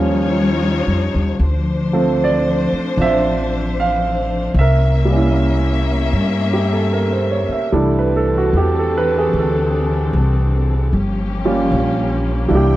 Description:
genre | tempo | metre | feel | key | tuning
jazz ballad | 76 BPM | 4/4 | swing 68% on 8ths | C major from 7.7 s | A4 = 441 Hz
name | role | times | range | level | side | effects
warm grand piano | accompaniment | 0.0-12.8 s | F3 to F5 | -18 LUFS | right 2 dB | none
warm studio string section | sustained chords | 0.0-12.8 s | E3 to G5 | -22 LUFS | left 3 dB | none
upright bass | bass | 0.0-12.8 s | G1 to G2 | -18 LUFS | equal | none
room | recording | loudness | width
light reverb | dry, close 1970s-style studio recording | -14 LUFS | side -15 dB against mid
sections
0.0-7.7 A section; 7.7-12.8 B section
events
none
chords
0.0 Eb9; 1.4 Dm9; 4.6 C7b9; 7.7 C69; 10.9 Gm7b5

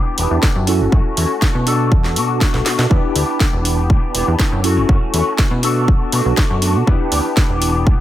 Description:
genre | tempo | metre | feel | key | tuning
filtered disco house | 121 BPM | 4/4 | straight | E dorian | A4 = 440 Hz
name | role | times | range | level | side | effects
tine electric piano | accompaniment | 0.0-8.0 s | B3 to B4 | -21 LUFS | right 1 dB | slow stereo tremolo, phaser, sidechain pumping, low-pass filter
electric guitar with an envelope filter | riff | 0.0-8.0 s | E3 to G4 | -23 LUFS | left 4 dB | ensemble chorus, sidechain pumping, low-pass filter
plucky analog bass | bass | 0.2-8.0 s | E1 to B2 | -18 LUFS | equal | sidechain pumping, low-pass filter
house drum kit | drums | 0.2-7.7 s | hi-hat, snare drum | -21 LUFS | equal | sidechain pumping on hats
electronic kick drum | drums | 0.4-8.0 s | none | -15 LUFS | equal | none
room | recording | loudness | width
little or no reverb | none | -13 LUFS | side -13 dB against mid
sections
0.0-8.0 A section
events
drum fill 2.5-2.9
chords
0.0 Em7; 0.7 F#m7; 1.7 Bm7; 2.9 Em7; 4.6 F#m7; 5.6 Bm7; 6.9 Em7

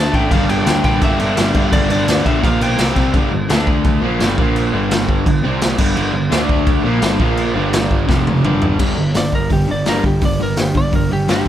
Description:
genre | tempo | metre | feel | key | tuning
punk rock | 170 BPM | 4/4 | straight | G dorian, G minor from 3.1 s | A4 = 440 Hz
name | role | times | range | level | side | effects
lightly driven lead guitar | melody | 0.0-3.0, 9.2-11.5 s | G4 to A5 | -22 LUFS | equal | none
distorted electric guitar | riff | 0.0-11.5 s | F2 to D4 | -21 LUFS | right 6 dB | distortion
fuzz guitar | riff | 0.0-3.1, 6.0-8.8 s | F2 to D4 | -24 LUFS | equal | distortion
overdriven semi-hollow guitar | riff | 0.0-11.5 s | F2 to A4 | -21 LUFS | left 6 dB | none
fuzz picked electric bass | bass | 0.0-11.5 s | F1 to C3 | -21 LUFS | equal | overdrive
raw garage drum kit | drums | 0.1-11.5 s | crash cymbal, hi-hat, kick drum, snare drum, toms | -17 LUFS | equal | none
room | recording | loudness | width
light reverb | none | -13 LUFS | side -11 dB against mid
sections
0.0-3.1 A section; 3.1-8.8 B section; 8.8-11.5 C section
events
drum fill 8.1-8.8; lead electric guitar solo 8.8-11.5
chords
0.3 Gm; 2.4 Bb5; 2.8 C5; 3.1 G5; 3.5 D5; 4.0 Gm; 4.4 Bb5; 4.7 G5; 5.4 C5; 5.8 G5; 6.3 D5; 6.8 Gm; 7.2 Bb5; 7.6 G5; 8.1 F5; 8.4 G5

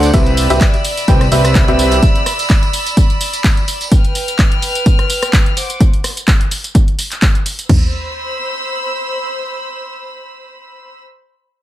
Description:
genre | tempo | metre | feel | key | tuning
piano house | 127 BPM | 4/4 | swing 55% on 16ths | C major | A4 = 440 Hz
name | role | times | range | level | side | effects
rich studio violin section | sustained chords | 0.0-10.9 s | B4 to F6 | -21 LUFS | equal | sidechain pumping
clear upright piano | riff | 0.0-2.0 s | C3 to G5 | -15 LUFS | equal | sidechain pumping, digital delay
fat analog bass | bass | 0.0-2.0 s | C2 to D2 | -15 LUFS | equal | tube saturation, sidechain pumping
punchy analog drum machine | drums | 0.0-7.7 s | handclaps, hi-hat, rim click, tambourine | -20 LUFS | equal | none
tambourine | percussion | 0.0-3.9 s | none | -29 LUFS | right 3 dB | none
punchy analog drum machine | drums | 0.1-7.8 s | crash cymbal, kick drum, toms | -12 LUFS | equal | none
room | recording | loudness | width
little or no reverb | none | -11 LUFS | side -14 dB against mid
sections
0.0-7.7 A section; 7.7-11.5 B section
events
drop 0.0-7.7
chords
0.1 Cmaj7; 3.9 G7; 5.6 D7; 7.7 Cmaj7

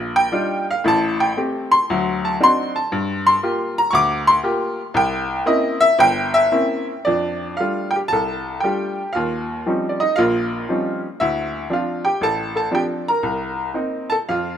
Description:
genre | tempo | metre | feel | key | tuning
solo jazz | 116 BPM | 4/4 | swing 66% on 8ths, rubato | F major | A4 = 441 Hz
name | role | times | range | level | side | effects
bright upright piano | solo | 0.0-14.6 s | G1 to D6 | -17 LUFS | equal | none
room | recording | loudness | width
moderate plate reverb, RT60 3.5 s | minimal, uncompressed stereo recording | -17 LUFS | side -9 dB against mid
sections
0.0-7.1 A section; 7.1-14.6 B section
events
upright piano solo 0.0-7.1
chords
0.0 Ebmaj9; 0.9 Am7; 1.9 D7b9; 2.9 Gm7; 4.9 C7b9; 7.1 F69; 9.2 Eb13; 11.2 Dm7; 13.2 Cm7

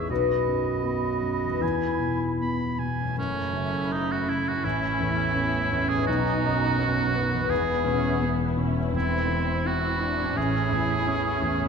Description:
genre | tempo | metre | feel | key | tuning
cinematic, emotional film score for orchestra | 83 BPM | 4/4 | rubato | E major | A4 = 440 Hz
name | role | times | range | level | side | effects
bright oboe | second line | 0.0-11.7 s | C#4 to B5 | -29 LUFS | right 2 dB | none
clear clarinet | second line | 0.0-2.8 s | E4 to F#4 | -30 LUFS | right 3 dB | none
mellow flute section | second line | 0.0-2.8 s | B5 | -36 LUFS | right 4 dB | none
dark concert grand piano | accompaniment | 0.0-11.7 s | A1 to C#4 | -29 LUFS | left 1 dB | none
concert harp | arpeggios | 0.0-11.7 s | F#2 to E5 | -32 LUFS | left 8 dB | none
muted symphonic violin section | second line | 3.2-11.7 s | A3 to E4 | -33 LUFS | left 3 dB | none
muted symphonic cello section | bass | 3.2-11.7 s | E2 to B2 | -34 LUFS | right 6 dB | none
muted symphonic double bass section | bass | 3.2-11.7 s | E1 to B1 | -34 LUFS | right 6 dB | none
muted symphonic viola section | accompaniment | 4.6-11.7 s | B3 to E4 | -31 LUFS | right 2 dB | none
room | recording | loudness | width
wet scoring stage reverb, RT60 1.9 s | none | -23 LUFS | side -6 dB against mid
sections
0.0-3.2 A section; 3.2-11.7 A section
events
none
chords
0.1 B; 1.6 E; 3.2 F#m7; 4.6 A; 6.1 B; 7.5 E; 8.9 C/E; 10.4 A

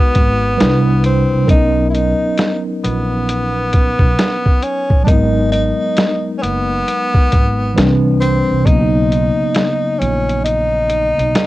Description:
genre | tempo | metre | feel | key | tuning
lo-fi hip hop | 67 BPM | 4/4 | swing 63% on 16ths | unclear | A4 = 440 Hz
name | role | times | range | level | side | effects
breathy tenor saxophone | melody | 0.0-11.5 s | B3 to E4 | -18 LUFS | left 1 dB | cassette tape
mellow tine electric piano | accompaniment | 0.0-11.5 s | C3 to B4 | -18 LUFS | right 1 dB | medium stereo tremolo, cassette tape
upright bass | bass | 0.2-11.3 s | F#1 to C2 | -18 LUFS | equal | tube saturation
lo-fi sampler-style drum kit | drums | 0.2-11.5 s | hi-hat, kick drum, snare drum | -14 LUFS | equal | none
room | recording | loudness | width
light reverb | home recording on cassette | -12 LUFS | side -17 dB against mid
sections
0.0-11.5 A section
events
kick muted 10.4-11.5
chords
0.0 G#m7; 0.6 Cmaj9; 1.5 Bmaj9; 5.1 G#m7; 7.8 Cmaj9; 8.7 Bmaj9

